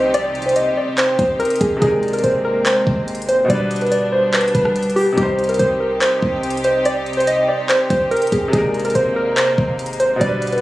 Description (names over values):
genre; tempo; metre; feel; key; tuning
hip hop, trap; 143 BPM; 4/4; half-time; C minor; A4 = 440 Hz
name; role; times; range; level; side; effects
warbly dusty pluck; melody; 0.0-10.6 s; G4 to Eb5; -17 LUFS; equal; chorus
hollow clarinet-like synth lead; second line; 0.0-10.2 s; C5 to Eb5; -28 LUFS; equal; none
bright concert grand piano; accompaniment; 0.0-10.6 s; B2 to C5; -25 LUFS; left 1 dB; none
warm studio string section; sustained chords; 0.0-10.6 s; C3 to G4; -25 LUFS; equal; none
clean 808-style bass; bass; 0.0-10.6 s; G1 to C2; -27 LUFS; equal; none
downlifter; sound effects; 0.0-1.8 s; none; -38 LUFS; equal; none
trap drum kit; drums; 0.1-10.6 s; handclaps, hi-hat, kick drum, rim click; -23 LUFS; equal; vintage 12-bit sampler grit
room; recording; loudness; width
digital ambience; recorded on a phone in the room, studio reverb; -15 LUFS; side -16 dB against mid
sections
0.0-10.6 A section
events
none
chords
0.0 Cm; 1.8 Abadd9; 3.5 G; 5.2 Cm; 8.5 Abadd9